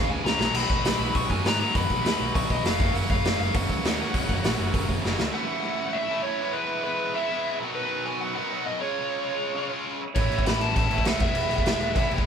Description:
punk rock; 200 BPM; 4/4; straight; A4 = 441 Hz
dark smooth lead guitar; melody; 0.0-12.1 s; B4 to C#6; -28 LUFS; left 1 dB; overdrive
tight distorted guitar; riff; 0.0-12.3 s; F#2 to E#4; -29 LUFS; equal; distortion
picked electric bass; bass; 0.0-5.3, 10.2-12.2 s; E1 to G#2; -30 LUFS; equal
raw garage drum kit; drums; 0.3-5.3, 10.2-12.3 s; crash cymbal, hi-hat, kick drum, snare drum; -25 LUFS; equal
moderate studio ambience, RT60 0.5 s; band playing live in one room; -23 LUFS; side -7 dB against mid
0.0-5.3 A section; 5.3-12.3 B section
drum fill 0.0-0.6, 5.0-5.3
0.4 B; 2.8 F#; 5.3 A; 6.4 E; 7.6 B; 8.8 C#; 10.2 A; 11.2 E

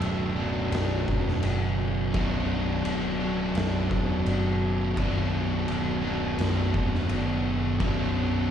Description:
stoner and doom metal; 85 BPM; 4/4; straight; B minor; A4 = 441 Hz
raw garage guitar; riff; 0.0-8.5 s; B1 to D4; -31 LUFS; equal; overdrive, slapback echo
thick fuzz guitar; riff; 0.0-8.5 s; B1 to B2; -32 LUFS; left 7 dB; distortion
thick fuzz guitar; riff; 0.0-8.5 s; B1 to B2; -31 LUFS; right 6 dB; distortion
growling picked electric bass; bass; 0.0-8.5 s; B0 to F#1; -30 LUFS; equal; overdrive
oversized low-tuned drum kit; drums; 0.0-8.0 s; crash cymbal, kick drum, snare drum; -32 LUFS; equal
small room ambience; live gig heard through the venue's PA, club reverb; -24 LUFS; side -9 dB against mid
0.0-8.5 A section
0.0 Bm

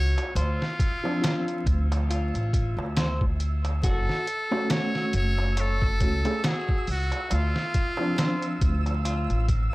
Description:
trip hop; 69 BPM; 4/4; swing 57% on 16ths; A4 = 437 Hz
trumpet with metal mute; melody; 0.0-9.1 s; F4 to C#5; -32 LUFS; equal; tape echo
electric guitar at the edge of break-up; arpeggios; 0.0-9.5 s; F4 to C#5; -36 LUFS; left 1 dB; tape echo
upright bass; bass; 0.0-9.7 s; F#1 to D2; -25 LUFS; equal; transformer saturation
flickering grainy texture; texture; 0.0-9.7 s; E6; -40 LUFS; right 4 dB; built-in reverb
trip hop sampler-style drum kit; drums; 0.2-9.7 s; hi-hat, kick drum, snare drum; -27 LUFS; equal; small room ambience
darbuka; percussion; 0.2-9.4 s; -40 LUFS; right 1 dB
felt-muted upright piano; accompaniment; 1.0-9.7 s; F3 to G#4; -31 LUFS; equal; harmonic tremolo, vintage 12-bit sampler grit, tape echo
studio reverb; dry, gritty hardware recording, vinyl crackle; -23 LUFS; side -20 dB against mid
0.0-9.7 A section
0.4 Dm7; 3.8 F#m; 7.3 Dm7

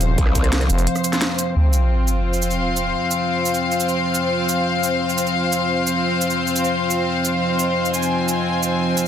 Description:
dark technical drum and bass; 174 BPM; 4/4; straight; A4 = 441 Hz
dark analog pad; sustained chords; 0.0-9.1 s; F3 to F5; -23 LUFS; equal; chorus, sidechain pumping
growling FM bass; bass; 0.0-0.9 s; Eb1 to F1; -18 LUFS; equal
drum and bass drum kit; drums; 0.0-9.0 s; cabasa, hi-hat, rim click, snare drum; -24 LUFS; right 2 dB; overdrive
rich studio string section; texture; 0.0-9.1 s; C4 to Ab5; -21 LUFS; left 2 dB; sidechain pumping
growl bass; bass; 0.2-0.7 s; C2; -20 LUFS; equal; chorus
sub drop; sound effects; 1.6-2.9 s; -19 LUFS; equal
light reverb, digital ambience; dense, heavily limited modern master; -17 LUFS; side -9 dB against mid
0.0-1.6 A section; 1.6-9.1 B section
drop 0.0-1.6; break 0.9-1.6; band accent 1.2; impact 1.6-2.9
0.0 F5

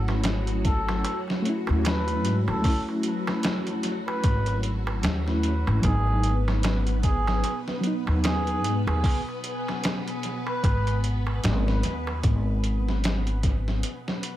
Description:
trip hop; 75 BPM; 4/4; swing 58% on 16ths; G# phrygian; A4 = 440 Hz
mellow reed electric piano; accompaniment; 0.0-9.1 s; F#3 to E4; -31 LUFS; equal; tremolo, tape echo
string machine, cellos; sustained chords; 0.0-14.4 s; F#3 to B4; -33 LUFS; left 1 dB; phaser, ensemble chorus, vintage 12-bit sampler grit
upright bass; bass; 0.0-13.8 s; G#1 to G#2; -25 LUFS; equal
trip hop sampler-style drum kit; drums; 0.1-14.4 s; hi-hat, kick drum, snare drum; -28 LUFS; equal; overdrive, analog delay
darbuka; percussion; 0.1-12.2 s; -37 LUFS; right 3 dB
trumpet with cup mute; melody; 0.7-11.0 s; G#4 to B4; -32 LUFS; right 1 dB; vintage 12-bit sampler grit, dub echo
light reverb, studio reverb; echo-heavy mix; -23 LUFS; side -13 dB against mid
0.0-14.4 A section
0.0 A/G#; 5.8 G#m7; 12.2 G#m

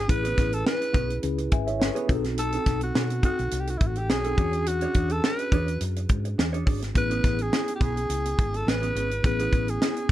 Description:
polished 1980s jazz-funk pop; 105 BPM; 4/4; swing 54% on 16ths; A major; A4 = 436 Hz
raspy alto saxophone; melody; 0.0-10.1 s; E4 to B4; -29 LUFS; equal
mellow tine electric piano; accompaniment; 0.0-10.1 s; B3 to G#5; -32 LUFS; left 2 dB; medium stereo tremolo, wide subtle chorus
hollow-body short-scale fingered electric bass; bass; 0.0-10.1 s; G#1 to B2; -29 LUFS; equal
mellow electric guitar; riff; 0.1-10.1 s; B3 to C#5; -35 LUFS; right 4 dB; wide subtle chorus
tight funk drum kit; drums; 0.1-10.1 s; hi-hat, kick drum, snare drum; -25 LUFS; equal
little or no reverb; -23 LUFS; side -13 dB against mid
0.0-10.1 A section
0.0 Amaj9; 2.1 B7b9; 4.4 E13; 7.0 Amaj9

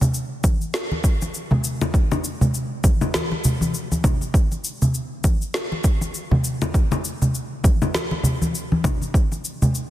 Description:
downtempo; 100 BPM; 4/4; swing 58% on 16ths
electronic shaker, snare drum and congas; drums; 0.0-9.9 s; -26 LUFS; left 2 dB
congas; percussion; 0.0-9.7 s; -22 LUFS; equal
electronic kick drum; drums; 0.4-9.3 s; -18 LUFS; equal
light reverb, digital ambience; dense, heavily limited modern master; -19 LUFS; side -14 dB against mid
0.0-9.9 A section

